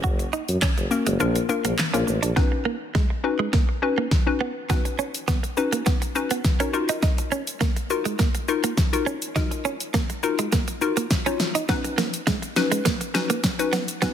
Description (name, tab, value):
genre	dance-pop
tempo	103 BPM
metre	4/4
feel	straight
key	unclear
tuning	A4 = 439 Hz
part	hollow square pluck	accompaniment	0.0-14.1 s	Bb3 to Db5	-26 LUFS	left 5 dB	chorus, sidechain pumping
part	direct-recorded clean electric guitar	riff	0.0-14.1 s	Ab3 to Gb4	-28 LUFS	right 6 dB	wide subtle chorus
part	warm tuba	bass	0.0-2.3 s	Gb1 to Gb2	-25 LUFS	equal	sidechain pumping
part	pop drum kit	drums	0.0-14.1 s	handclaps, hi-hat, kick drum, shaker, snare drum	-23 LUFS	equal	soft clipping on snare
room	light reverb, digital ambience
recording	dense, heavily limited modern master, high-pass filter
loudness	-21 LUFS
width	side -9 dB against mid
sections	0.0-2.4 A section; 2.4-14.1 B section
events	kick muted 1.2-2.4; build-up 2.4-14.1; drum fill 2.4-14.1; filter sweep 2.4-14.1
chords	0.0 Gbadd9; 1.2 Bb; 2.4 Badd9; 6.7 Ebmadd9; 11.7 Badd9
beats	| 0.04 0.62 1.20 1.79 | 2.37 2.95 3.53 4.12 | 4.70 5.28 5.86 6.45 | 7.03 7.61 8.19 8.78 | 9.36 9.94 10.52 11.11 | 11.69 12.27 12.85 13.44 | 14.02